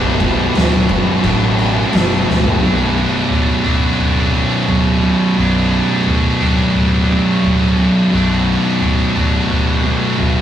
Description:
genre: stoner and doom metal.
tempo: 87 BPM.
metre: 4/4.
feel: straight.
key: B minor.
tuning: A4 = 440 Hz.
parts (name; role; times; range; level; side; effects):
high-gain distorted guitar; riff; 0.0-10.4 s; B1 to D4; -17 LUFS; right 1 dB; distortion.
thick fuzz guitar; riff; 0.0-10.4 s; B1 to B2; -19 LUFS; left 3 dB; distortion.
thick fuzz guitar; riff; 0.0-10.4 s; B1 to B2; -20 LUFS; right 5 dB; distortion.
hollow-body short-scale picked electric bass; bass; 0.0-10.4 s; B0 to A1; -19 LUFS; equal; overdrive.
oversized low-tuned drum kit; drums; 0.2-2.6 s; crash cymbal, kick drum, snare drum, toms; -17 LUFS; equal; none.
room: moderate small room reverb, RT60 0.6 s.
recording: rough rehearsal-room recording, tube saturation.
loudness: -12 LUFS.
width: side -10 dB against mid.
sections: 0.0-2.6 A section; 2.6-10.4 B section.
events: drum fill 2.3-2.6.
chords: 0.0 Bm.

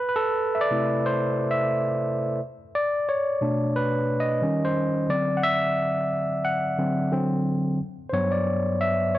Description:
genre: R&B.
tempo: 89 BPM.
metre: 4/4.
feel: swing 54% on 16ths.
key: unclear.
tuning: A4 = 439 Hz.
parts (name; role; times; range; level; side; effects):
overdriven tine electric piano; solo; 0.0-9.2 s; G2 to F#5; -22 LUFS; equal; none.
room: moderate echo chamber reverb, RT60 1.6 s.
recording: none.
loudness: -22 LUFS.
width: side -15 dB against mid.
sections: 0.0-9.2 A section.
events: tine electric piano solo 0.0-9.2.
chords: 0.0 C6; 2.4 Bm7; 4.4 D#7; 5.1 D7; 7.8 Gmaj7.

